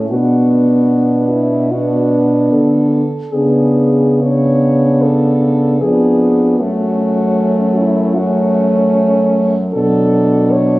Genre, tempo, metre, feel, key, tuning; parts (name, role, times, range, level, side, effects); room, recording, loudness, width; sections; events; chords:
classical, lyrical piece for horn quartet; 76 BPM; 4/4; rubato; F# minor; A4 = 439 Hz
mellow French horn; second line; 0.0-10.8 s; C#4 to D4; -17 LUFS; right 1 dB
mellow French horn; accompaniment; 0.0-10.8 s; F#3 to B3; -15 LUFS; equal
mellow French horn; bass; 0.0-10.8 s; E#2 to D3; -17 LUFS; equal
warm French horn; melody; 0.1-10.8 s; E4 to C#5; -19 LUFS; left 1 dB
light reverb; recorded on a phone in the room, club reverb; -11 LUFS; side -19 dB against mid
0.0-10.8 A section
0.1 Bm; 3.3 C#7b9; 6.6 F#m; 9.7 Bm7